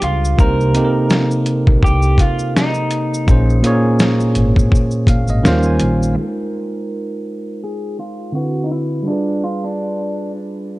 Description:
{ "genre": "lo-fi hip hop", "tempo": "83 BPM", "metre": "4/4", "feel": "swing 57% on 16ths", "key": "Ab major", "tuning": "A4 = 441 Hz", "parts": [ { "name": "electric guitar through a small old amp", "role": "melody", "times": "0.0-10.3 s", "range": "D4 to Bb4", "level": "-23 LUFS", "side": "right 1 dB", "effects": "low-pass filter, tape echo" }, { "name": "bell-like tine electric piano", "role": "accompaniment", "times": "0.0-10.8 s", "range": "Bb2 to Ab5", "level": "-18 LUFS", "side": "right 1 dB", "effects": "cassette tape, low-pass filter" }, { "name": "upright bass", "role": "bass", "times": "0.0-6.1 s", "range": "Ab1 to Eb2", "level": "-17 LUFS", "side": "equal", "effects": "none" }, { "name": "dusty soul sampler-style drum kit", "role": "drums", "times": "0.0-6.2 s", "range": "hi-hat, kick drum, shaker, snare drum", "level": "-15 LUFS", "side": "equal", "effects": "vintage 12-bit sampler grit" } ], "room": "little or no reverb", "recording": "none", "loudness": "-14 LUFS", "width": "side -19 dB against mid", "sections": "0.0-6.2 A section; 6.2-10.8 B section", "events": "tine electric piano fill 4.7-6.2; filter sweep 6.2-10.8", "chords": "0.4 Cm7; 3.3 Bbm9; 5.4 Eb13; 6.2 Abmaj13; 8.3 D13; 9.1 G7b9" }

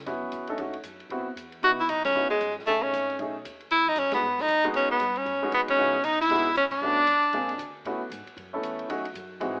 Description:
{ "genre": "jazz, small-group swing and bop", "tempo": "231 BPM", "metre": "4/4", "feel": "swing 61% on 8ths", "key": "E major", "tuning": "A4 = 440 Hz", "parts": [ { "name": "upright bass", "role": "bass", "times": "0.0-9.6 s", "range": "G#1 to A2", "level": "-50 LUFS", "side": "equal", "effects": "none" }, { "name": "clear baby grand piano", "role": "accompaniment", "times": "0.1-9.6 s", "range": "E3 to A4", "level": "-35 LUFS", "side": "equal", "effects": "none" }, { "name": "open jazz drum kit", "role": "drums", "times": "0.1-9.5 s", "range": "crash cymbal, hi-hat, kick drum, ride cymbal, snare drum", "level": "-47 LUFS", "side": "equal", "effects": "none" }, { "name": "bright tenor saxophone", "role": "melody", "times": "1.6-7.7 s", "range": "G#3 to F#4", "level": "-25 LUFS", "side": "equal", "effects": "none" }, { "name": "brilliant trumpet", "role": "second line", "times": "5.6-7.7 s", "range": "B3 to E4", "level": "-38 LUFS", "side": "equal", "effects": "none" } ], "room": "light reverb, small room ambience", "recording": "rough home demo mix, AM radio sound", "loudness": "-26 LUFS", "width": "mono", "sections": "0.0-5.8 A section; 5.8-9.6 B section", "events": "band accent 2.0, 4.1, 5.7, 6.7", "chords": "0.0 A6; 0.6 D#m7b5; 1.1 G#7#9b13 (rootless); 1.6 C#m11; 2.7 B13; 3.7 Emaj9; 5.8 C#m11; 6.8 Bm7; 7.3 A#9; 7.9 A6; 8.9 D#m7b5" }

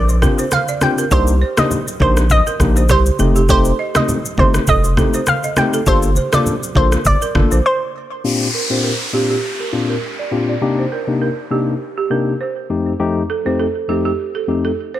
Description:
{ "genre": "afrobeats", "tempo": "101 BPM", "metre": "4/4", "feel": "swing 55% on 16ths", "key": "C dorian", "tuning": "A4 = 440 Hz", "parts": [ { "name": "analog pluck", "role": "melody", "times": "0.0-8.1 s", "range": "C5 to G5", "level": "-19 LUFS", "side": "right 1 dB", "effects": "chorus, digital delay" }, { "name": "balafon", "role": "riff", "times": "0.0-15.0 s", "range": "G4 to Eb5", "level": "-23 LUFS", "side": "right 6 dB", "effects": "low-pass filter, digital delay" }, { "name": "saturated sub bass", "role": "bass", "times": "0.0-7.6 s", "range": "F1 to C2", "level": "-16 LUFS", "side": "equal", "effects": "none" }, { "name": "afro-pop drum kit", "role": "drums", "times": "0.1-7.6 s", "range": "kick drum, rim click, shaker", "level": "-18 LUFS", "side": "equal", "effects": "none" }, { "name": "bright tine electric piano", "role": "accompaniment", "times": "0.2-14.7 s", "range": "F2 to A4", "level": "-20 LUFS", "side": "left 4 dB", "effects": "low-pass filter" }, { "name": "congas", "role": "percussion", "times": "0.2-7.5 s", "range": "none", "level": "-22 LUFS", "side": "right 1 dB", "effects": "none" }, { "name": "downlifter", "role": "sound effects", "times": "8.2-13.0 s", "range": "none", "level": "-24 LUFS", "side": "equal", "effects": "none" } ], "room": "light reverb", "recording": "none", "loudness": "-14 LUFS", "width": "side -13 dB against mid", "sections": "0.0-8.2 A section; 8.2-15.0 B section", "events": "break 7.6-8.2; filter sweep 8.2-15.0", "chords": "0.0 Bb6; 1.1 Cm7; 3.2 F7; 5.9 Gm7; 8.2 Bb6; 10.6 Cm7; 12.7 F7" }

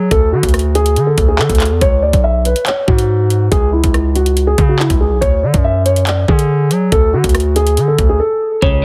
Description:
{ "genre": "hip hop, drill", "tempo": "141 BPM", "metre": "4/4", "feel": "half-time", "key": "unclear", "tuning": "A4 = 440 Hz", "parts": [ { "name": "dark concert grand piano", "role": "melody", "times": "0.0-8.8 s", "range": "E4 to E5", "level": "-18 LUFS", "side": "equal", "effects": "low-pass filter, tape echo" }, { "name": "distorted 808-style bass", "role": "bass", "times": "0.0-8.8 s", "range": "B1 to F#3", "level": "-17 LUFS", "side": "equal", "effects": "distortion" }, { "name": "drill drum kit", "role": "drums", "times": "0.1-8.7 s", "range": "handclaps, hi-hat, kick drum, rim click", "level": "-17 LUFS", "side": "equal", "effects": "none" }, { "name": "clean electric guitar", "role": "accompaniment", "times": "8.6-8.8 s", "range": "C#3", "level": "-19 LUFS", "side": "equal", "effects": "low-pass filter" } ], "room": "digital ambience", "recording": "heavily compressed radio sound", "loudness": "-13 LUFS", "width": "mono", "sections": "0.0-8.8 A section", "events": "break 8.2-8.6; hi-hats muted 8.6", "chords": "0.0 D; 1.8 C#m; 5.2 D" }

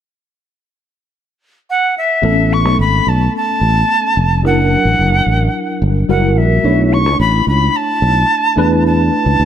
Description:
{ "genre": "pop", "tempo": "109 BPM", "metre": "4/4", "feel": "straight", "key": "A major", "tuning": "A4 = 440 Hz", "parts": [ { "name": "jazz flute", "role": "melody", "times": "1.7-9.4 s", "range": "E5 to C#6", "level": "-15 LUFS", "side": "equal", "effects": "none" }, { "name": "tine electric piano", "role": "accompaniment", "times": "2.2-9.4 s", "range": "F#3 to C#5", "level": "-17 LUFS", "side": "left 1 dB", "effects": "overdrive, fast stereo tremolo, ensemble chorus" }, { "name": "sustaining fretless electric bass", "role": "bass", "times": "2.2-9.4 s", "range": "F1 to E2", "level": "-14 LUFS", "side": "equal", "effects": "none" } ], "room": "light reverb, small room ambience", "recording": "none", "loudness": "-11 LUFS", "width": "side -9 dB against mid", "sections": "0.0-2.2 A section; 2.2-9.4 B section", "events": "none", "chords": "0.0 N.C.; 2.2 Aadd9; 4.4 F#7alt; 6.1 F#7b9; 6.6 Bm11; 8.6 E7sus4" }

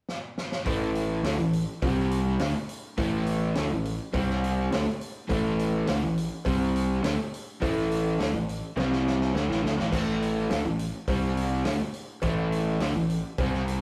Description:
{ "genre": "classic rock", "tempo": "104 BPM", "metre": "4/4", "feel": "straight", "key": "unclear", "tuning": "A4 = 440 Hz", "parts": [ { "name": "vintage drum kit", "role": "drums", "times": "0.1-13.8 s", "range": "crash cymbal, hi-hat, kick drum, snare drum", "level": "-36 LUFS", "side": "equal", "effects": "none" }, { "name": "crunchy overdriven guitar", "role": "riff", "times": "0.6-13.8 s", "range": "A2 to C4", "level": "-35 LUFS", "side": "equal", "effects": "harmonic tremolo" }, { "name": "crunchy overdriven guitar", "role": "riff", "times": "0.7-13.8 s", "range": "A2 to C4", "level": "-30 LUFS", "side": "equal", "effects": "spring reverb" }, { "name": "fuzz fingered electric bass", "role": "bass", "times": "0.7-13.8 s", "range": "A1 to D2", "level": "-35 LUFS", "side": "equal", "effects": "overdrive" }, { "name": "cowbell", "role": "percussion", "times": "0.7-13.5 s", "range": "none", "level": "-40 LUFS", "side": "equal", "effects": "none" } ], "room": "moderate studio reverb, RT60 0.6 s", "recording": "rough rehearsal-room recording, tube saturation", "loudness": "-27 LUFS", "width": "mono", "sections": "0.7-13.8 A section", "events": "drum fill 0.1-0.7, 8.8-9.9", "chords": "0.0 N.C.; 0.7 A5; 1.8 C5; 2.4 A5; 4.1 C5; 4.7 A5; 6.5 C5; 7.0 A5; 8.8 C5; 9.4 A5; 11.1 C5; 11.7 A5" }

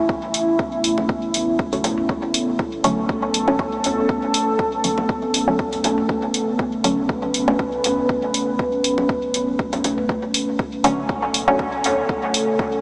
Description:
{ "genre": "dub techno", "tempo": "120 BPM", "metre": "4/4", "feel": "swing 54% on 16ths", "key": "B minor", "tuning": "A4 = 442 Hz", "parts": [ { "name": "deep dark ambient pad", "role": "sustained chords", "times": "0.0-12.8 s", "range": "A3 to B4", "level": "-21 LUFS", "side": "equal", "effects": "chorus, built-in reverb, sidechain pumping" }, { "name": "soft dub sub bass", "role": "bass", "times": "0.0-12.2 s", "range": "F#1 to D2", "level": "-40 LUFS", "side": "equal", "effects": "tube saturation, sidechain pumping" }, { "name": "electronic kick drum", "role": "drums", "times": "0.1-12.7 s", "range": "none", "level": "-25 LUFS", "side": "equal", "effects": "overdrive" }, { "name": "electronic hi-hat", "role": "drums", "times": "0.3-12.4 s", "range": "none", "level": "-22 LUFS", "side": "equal", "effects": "overdrive" }, { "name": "electronic bongos and toms", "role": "percussion", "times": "1.0-11.9 s", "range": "none", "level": "-32 LUFS", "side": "equal", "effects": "none" }, { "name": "filtered dub chord stab", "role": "stabs", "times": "1.7-7.7, 10.8-11.7 s", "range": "D3 to C#4", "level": "-23 LUFS", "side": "equal", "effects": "chorus, phaser, sidechain pumping, dub echo" } ], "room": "wet huge ambient reverb, RT60 6.9 s", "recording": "dreamy mix soaked in reverb, small speaker sound", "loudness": "-18 LUFS", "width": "side -32 dB against mid", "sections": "0.0-12.8 A section", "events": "filter sweep on synth stab 0.0-12.8", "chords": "0.0 Bm9" }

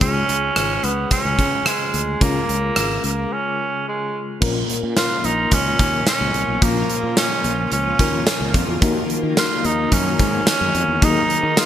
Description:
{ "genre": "1980s-style pop", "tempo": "109 BPM", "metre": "4/4", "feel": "straight", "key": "unclear", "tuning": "A4 = 440 Hz", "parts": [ { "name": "breathy tenor saxophone", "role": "melody", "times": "0.0-11.7 s", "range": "G#3 to E#4", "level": "-21 LUFS", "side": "right 2 dB", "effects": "digital delay" }, { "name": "FM electric piano with tremolo", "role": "accompaniment", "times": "0.0-11.7 s", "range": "A#2 to A#4", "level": "-25 LUFS", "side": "left 5 dB", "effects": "none" }, { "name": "fretless electric bass", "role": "bass", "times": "0.0-11.5 s", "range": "G#1 to D#3", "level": "-24 LUFS", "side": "equal", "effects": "none" }, { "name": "gated 80s drum kit", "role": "drums", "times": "0.0-11.7 s", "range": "crash cymbal, hi-hat, kick drum, rim click, snare drum", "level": "-20 LUFS", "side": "equal", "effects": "none" }, { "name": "shimmering ambient pad", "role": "sustained chords", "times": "6.1-11.7 s", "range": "C#3 to E#4", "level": "-29 LUFS", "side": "equal", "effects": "chorus, built-in reverb, phaser" }, { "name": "tambourine", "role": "percussion", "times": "5.0-11.7 s", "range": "none", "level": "barely audible", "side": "none", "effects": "none" } ], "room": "moderate lush hall reverb, RT60 2.7 s", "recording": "bright 1980s-style digital production", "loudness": "-17 LUFS", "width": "side -10 dB against mid", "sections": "0.0-4.4 A section; 4.4-11.7 B section", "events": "break 3.3-4.4", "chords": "0.0 C#; 4.4 A#m; 8.8 D#m" }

